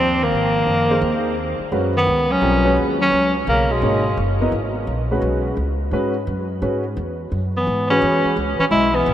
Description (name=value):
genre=modal jazz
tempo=172 BPM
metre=4/4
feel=swing 65% on 8ths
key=C# dorian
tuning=A4 = 440 Hz
part: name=warm tenor saxophone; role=melody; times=0.0-4.2, 7.6-9.1 s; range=G#3 to E4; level=-19 LUFS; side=equal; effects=none
part: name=breathy bass clarinet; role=second line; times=0.0-4.2, 7.5-9.1 s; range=B2 to G#3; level=-24 LUFS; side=left 2 dB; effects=diffuse ambient delay
part: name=upright bass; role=bass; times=0.0-9.1 s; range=Gb1 to G#2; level=-24 LUFS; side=equal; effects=none
part: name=warm concert grand piano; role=accompaniment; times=0.9-8.3 s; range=G3 to D#5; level=-23 LUFS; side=equal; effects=analog chorus
room=wet huge ambient reverb, RT60 5.0 s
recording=dreamy mix soaked in reverb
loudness=-17 LUFS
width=side -11 dB against mid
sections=0.0-1.7 A section; 1.7-9.1 B section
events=none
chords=0.3 Ab9; 1.7 C#7sus4; 7.3 F#9sus4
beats=| 0.32 0.67 1.02 1.37 | 1.72 2.07 2.42 2.77 | 3.12 3.47 3.82 4.17 | 4.52 4.87 5.22 5.57 | 5.92 6.27 6.62 6.97 | 7.32 7.67 8.02 8.37 | 8.72 9.07